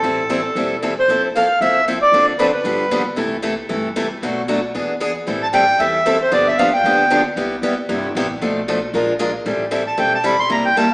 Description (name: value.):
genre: acoustic string swing (jazz manouche).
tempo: 229 BPM.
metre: 4/4.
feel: swing 57% on 8ths.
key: A minor.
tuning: A4 = 440 Hz.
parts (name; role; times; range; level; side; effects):
accordion; melody; 0.0-3.0, 5.4-7.2, 9.9-10.9 s; A4 to C6; -15 LUFS; equal; none.
picked steel-string acoustic guitar; second line; 0.0-0.8 s; C4; -35 LUFS; equal; none.
picked steel-string acoustic guitar; accompaniment; 0.0-10.9 s; B2 to Bb4; -19 LUFS; equal; none.
upright bass; bass; 0.0-10.9 s; E1 to E2; -32 LUFS; equal; none.
room: wet large studio reverb, RT60 1.3 s.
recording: band playing live in one room, small speaker sound.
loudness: -15 LUFS.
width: side -25 dB against mid.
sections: 0.0-1.1 A section; 1.1-9.5 B section; 9.5-10.9 C section.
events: accordion solo 9.5-10.9.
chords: 0.0 Am7; 1.1 Fmaj7; 2.1 Dm7; 2.7 G7; 3.2 C6; 4.2 Bm7; 4.7 E7; 5.3 Am7; 6.3 G7; 7.4 Cmaj7; 8.4 Bm7b5; 8.9 Bb7; 9.5 Am7.